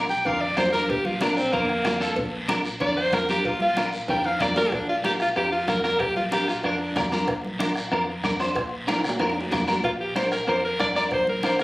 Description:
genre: latin, cumbia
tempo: 188 BPM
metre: 4/4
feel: straight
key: Bb major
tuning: A4 = 440 Hz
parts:
  - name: clean electric guitar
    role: accompaniment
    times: 0.0-11.6 s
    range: D4 to C5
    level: -26 LUFS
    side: equal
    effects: ensemble chorus
  - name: hollow-body short-scale fingered electric bass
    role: bass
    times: 0.0-11.6 s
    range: Bb1 to F2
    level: -34 LUFS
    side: equal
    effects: none
  - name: edgy alto saxophone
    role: melody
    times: 0.1-6.9, 9.8-11.6 s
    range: Bb3 to G5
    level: -23 LUFS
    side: equal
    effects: none
  - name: guiro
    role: percussion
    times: 0.1-11.6 s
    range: none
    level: -35 LUFS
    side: equal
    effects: none
  - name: bombo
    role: percussion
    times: 0.3-11.6 s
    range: none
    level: -34 LUFS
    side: equal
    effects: none
  - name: congas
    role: percussion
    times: 0.3-11.6 s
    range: none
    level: -34 LUFS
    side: equal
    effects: none
  - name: cowbell and timbales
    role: percussion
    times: 0.3-11.3 s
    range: none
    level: -32 LUFS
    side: right 1 dB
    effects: none
room: wet small room reverb, RT60 0.5 s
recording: recorded on a phone in the room, studio reverb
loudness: -21 LUFS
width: side -20 dB against mid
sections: 0.0-4.7 A section; 4.7-11.6 B section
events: alto saxophone solo 0.0-4.7; drum fill 4.1-4.7, 8.9-9.8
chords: 0.0 Bb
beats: 0.26 0.58 | 0.90 1.22 1.53 1.85 | 2.17 2.49 2.81 3.13 | 3.45 3.77 4.09 4.41 | 4.73 5.04 5.37 5.68 | 6.00 6.32 6.64 6.96 | 7.28 7.60 7.92 8.24 | 8.56 8.88 9.20 9.52 | 9.84 10.16 10.48 10.80 | 11.12 11.44

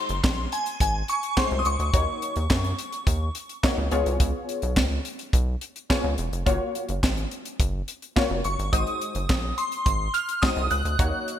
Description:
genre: early-eighties boogie funk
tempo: 106 BPM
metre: 4/4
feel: straight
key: unclear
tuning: A4 = 445 Hz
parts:
  - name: shimmering bell with halo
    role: melody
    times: 0.0-3.3, 8.4-11.4 s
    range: Ab5 to Gb6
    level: -27 LUFS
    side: equal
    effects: ensemble chorus
  - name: funky polysynth comp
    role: accompaniment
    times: 0.0-11.4 s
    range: Ab3 to Db5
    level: -29 LUFS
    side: left 2 dB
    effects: chorus
  - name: rubbery square bass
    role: bass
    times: 0.1-11.1 s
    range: Fb1 to Gb2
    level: -27 LUFS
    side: equal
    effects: none
  - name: tight funk drum kit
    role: drums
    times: 0.1-11.4 s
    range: handclaps, hi-hat, kick drum, snare drum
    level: -25 LUFS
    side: equal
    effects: gated reverb
room: light reverb, small room ambience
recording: bright 1980s-style digital production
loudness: -23 LUFS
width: side -10 dB against mid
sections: 0.0-11.4 A section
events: none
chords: 0.0 Ab7; 1.9 Ebm7; 3.9 Db7; 6.5 Gbmaj7; 8.7 Ab7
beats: 0.24 0.80 1.37 | 1.94 2.50 3.07 3.63 | 4.20 4.77 5.33 5.90 | 6.46 7.03 7.60 8.16 | 8.73 9.29 9.86 10.43 | 10.99

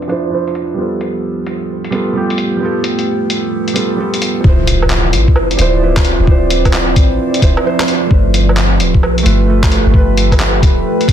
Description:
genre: future garage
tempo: 131 BPM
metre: 4/4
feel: swing 66% on 16ths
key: D dorian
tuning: A4 = 440 Hz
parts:
  - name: felt-muted upright piano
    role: accompaniment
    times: 0.0-11.1 s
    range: F3 to C5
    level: -18 LUFS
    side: right 2 dB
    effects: vintage 12-bit sampler grit, sidechain pumping, ping-pong delay
  - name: deep dark ambient pad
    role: sustained chords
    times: 0.0-11.1 s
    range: F3 to D5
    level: -18 LUFS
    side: right 2 dB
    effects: chorus, built-in reverb, vintage 12-bit sampler grit, sidechain pumping
  - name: lo-fi sampler-style drum kit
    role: drums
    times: 0.0-11.1 s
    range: handclaps, hi-hat, woodblock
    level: -18 LUFS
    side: equal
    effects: none
  - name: soft 808-style bass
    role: bass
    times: 4.4-11.1 s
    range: D1 to B1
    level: -14 LUFS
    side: equal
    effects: sidechain pumping
  - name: electronic kick drum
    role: drums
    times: 4.4-11.1 s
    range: none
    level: -11 LUFS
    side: equal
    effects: none
  - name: impact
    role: sound effects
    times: 4.4-6.3 s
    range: none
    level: -20 LUFS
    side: left 1 dB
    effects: none
room: light reverb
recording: dense, heavily limited modern master, low-pass filter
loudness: -11 LUFS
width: side -10 dB against mid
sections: 0.0-4.4 A section; 4.4-11.1 B section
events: filter sweep on ambient pad 0.0-4.4; filter sweep 0.0-4.4; impact 4.4-6.3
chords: 0.0 Dm9; 0.8 G9; 4.4 Dm9; 8.1 G9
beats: 0.32 | 0.78 1.24 1.70 2.15 | 2.61 3.07 3.53 3.98 | 4.44 4.90 5.36 5.82 | 6.28 6.73 7.19 7.65 | 8.11 8.56 9.02 9.48 | 9.94 10.40 10.86

